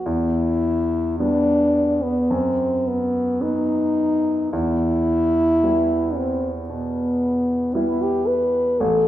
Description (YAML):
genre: classical, romantic duo for French horn and grand piano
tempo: 51-58 BPM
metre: 4/4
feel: rubato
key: E minor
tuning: A4 = 440 Hz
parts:
  - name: dark French horn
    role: melody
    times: 0.0-9.1 s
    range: B3 to B4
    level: -20 LUFS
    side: left 1 dB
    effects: none
  - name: warm concert grand piano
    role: accompaniment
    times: 0.0-9.1 s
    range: A1 to E4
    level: -24 LUFS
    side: right 1 dB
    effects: none
room: wet recital hall reverb, RT60 1.3 s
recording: minimal, uncompressed stereo recording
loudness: -18 LUFS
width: side -13 dB against mid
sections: 0.1-9.1 A section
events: none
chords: 0.1 Em; 2.3 B/F#; 4.5 Em